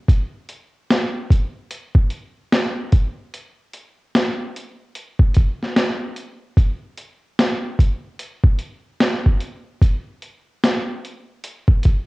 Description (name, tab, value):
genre	hip hop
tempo	74 BPM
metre	4/4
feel	swing 64% on 16ths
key	none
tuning	none
part	boom bap sampler-style drum kit	drums	0.1-12.1 s	hi-hat, kick drum, snare drum	-16 LUFS	equal	cassette tape
room	light reverb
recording	home recording on cassette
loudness	-18 LUFS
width	side -22 dB against mid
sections	0.0-6.6 A section; 6.6-12.1 B section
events	none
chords	none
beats	| 0.09 0.90 1.71 2.52 | 3.33 4.14 4.95 5.76 | 6.57 7.38 8.20 9.01 | 9.82 10.63 11.44